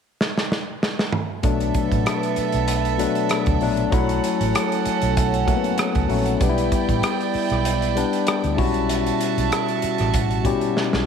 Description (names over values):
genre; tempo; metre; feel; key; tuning
lush 1970s-style soul; 97 BPM; 4/4; swing 54% on 16ths; B minor; A4 = 440 Hz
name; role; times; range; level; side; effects
modern studio drum kit; drums; 0.2-11.1 s; hi-hat, kick drum, rim click, snare drum, toms; -24 LUFS; right 1 dB; none
warm studio violin section; second line; 1.4-11.1 s; B3 to A5; -25 LUFS; right 12 dB; none
barky tine electric piano; accompaniment; 1.4-11.1 s; B2 to G4; -22 LUFS; left 8 dB; overdrive
vintage muted fingered electric bass; bass; 1.4-11.1 s; A1 to D2; -24 LUFS; right 2 dB; none
room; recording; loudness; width
moderate echo chamber reverb, RT60 1.6 s, small room ambience; 1960s-style stereo with parts hard left and right; -19 LUFS; side -7 dB against mid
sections
0.0-1.4 A section; 1.4-11.1 B section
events
drum fill 0.2-1.4, 10.8-11.1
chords
0.0 N.C.; 1.4 Bm7; 3.9 F#m7; 6.4 G6; 8.6 A13